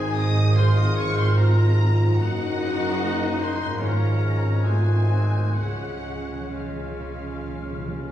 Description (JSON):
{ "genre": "classical", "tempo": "62-76 BPM", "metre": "4/4", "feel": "rubato", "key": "Db major", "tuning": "A4 = 440 Hz", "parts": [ { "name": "warm studio violin section", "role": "melody", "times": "0.0-8.1 s", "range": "F5 to Eb6", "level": "-36 LUFS", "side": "left 3 dB", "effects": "none" }, { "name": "clear clarinet", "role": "second line", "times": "0.0-8.1 s", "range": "C5 to Eb5", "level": "-39 LUFS", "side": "left 2 dB", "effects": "none" }, { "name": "mellow flute section", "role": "second line", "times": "0.0-8.1 s", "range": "Eb6 to Gb6", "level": "-37 LUFS", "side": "left 1 dB", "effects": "none" }, { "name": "rich studio violin section", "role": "second line", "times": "0.0-8.1 s", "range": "F5 to Eb6", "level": "-36 LUFS", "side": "left 3 dB", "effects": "none" }, { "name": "warm oboe", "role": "second line", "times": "0.0-8.1 s", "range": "F4 to Eb5", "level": "-38 LUFS", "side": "right 1 dB", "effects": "none" }, { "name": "mellow bassoon", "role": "accompaniment", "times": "0.0-8.1 s", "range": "Ab3 to Bb3", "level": "-40 LUFS", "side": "left 1 dB", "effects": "none" }, { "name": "rich chamber viola section", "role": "accompaniment", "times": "0.0-8.1 s", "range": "Ab3 to Ab4", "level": "-36 LUFS", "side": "right 1 dB", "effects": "none" }, { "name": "dark trombone section", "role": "sustained chords", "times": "0.0-8.1 s", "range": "Eb3 to C4", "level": "-37 LUFS", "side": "right 1 dB", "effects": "none" }, { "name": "mellow French horn section", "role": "sustained chords", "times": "0.0-8.1 s", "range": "Db4 to C5", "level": "-33 LUFS", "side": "left 2 dB", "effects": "none" }, { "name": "concert harp", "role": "arpeggios", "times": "0.0-8.1 s", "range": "Gb2 to Eb5", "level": "-30 LUFS", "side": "left 1 dB", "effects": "none" }, { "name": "mellow trumpet", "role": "stabs", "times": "0.0-8.1 s", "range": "C4 to Ab4", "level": "-36 LUFS", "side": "left 1 dB", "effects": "none" }, { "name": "rich studio cello section", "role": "bass", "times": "0.0-8.1 s", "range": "Gb2 to Db3", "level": "-27 LUFS", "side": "right 2 dB", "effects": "none" }, { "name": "warm studio double bass section", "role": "bass", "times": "0.0-8.1 s", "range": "Gb1 to Db2", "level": "-24 LUFS", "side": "right 1 dB", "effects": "none" }, { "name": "warm tuba", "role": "bass", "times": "0.0-8.1 s", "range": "Gb1 to Db2", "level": "-32 LUFS", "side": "right 1 dB", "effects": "none" }, { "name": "timpani", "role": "percussion", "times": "0.6-8.1 s", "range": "Ab2 to Db3", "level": "-37 LUFS", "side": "equal", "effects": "none" } ], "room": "wet recital hall reverb, RT60 1.6 s", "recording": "recorded in a church or concert hall, studio reverb", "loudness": "-20 LUFS", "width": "side -12 dB against mid", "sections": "0.0-8.1 A section", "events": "timpani fill 5.6-8.1", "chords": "0.0 Ab; 0.6 Fm/Ab; 2.2 Ebm/Gb; 3.8 Db/Ab; 4.6 Ab7b9; 5.6 Db", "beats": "0.57 1.37 | 2.19 3.00 3.80 4.65 | 5.57 6.53 7.45" }